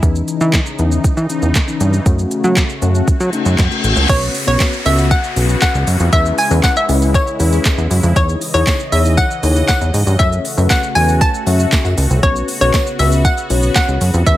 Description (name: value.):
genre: dance-pop.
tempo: 118 BPM.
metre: 4/4.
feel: straight.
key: unclear.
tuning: A4 = 436 Hz.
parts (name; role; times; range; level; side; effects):
mellow tine electric piano; accompaniment; 0.0-14.4 s; E3 to E5; -22 LUFS; left 4 dB; medium stereo tremolo, sidechain pumping.
sweeping resonant pad; sustained chords; 0.0-14.4 s; C#3 to D#5; -24 LUFS; equal; chorus, sidechain pumping.
plucky analog bass; bass; 0.0-14.4 s; A1 to F#3; -14 LUFS; equal; sidechain pumping.
smooth R&B drum kit; drums; 0.0-14.4 s; crash cymbal, handclaps, hi-hat, kick drum, shaker, snare drum; -17 LUFS; equal; overdrive.
reverse cymbal and downlifter; sound effects; 3.3-8.2 s; none; -23 LUFS; left 3 dB; none.
hollow square pluck; melody; 4.1-14.4 s; C#5 to A5; -18 LUFS; left 1 dB; chorus, tape echo.
tambourine; percussion; 4.1-14.4 s; none; -34 LUFS; right 11 dB; none.
room: little or no reverb.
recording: none.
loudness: -12 LUFS.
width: side -14 dB against mid.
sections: 0.0-4.1 A section; 4.1-14.4 B section.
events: reverse cymbal 3.3-4.1.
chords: 0.0 C#madd9/E; 2.1 F#m; 4.1 Bsus2; 6.1 E6; 8.2 C#madd9/E; 10.2 F#m; 12.2 Bsus2.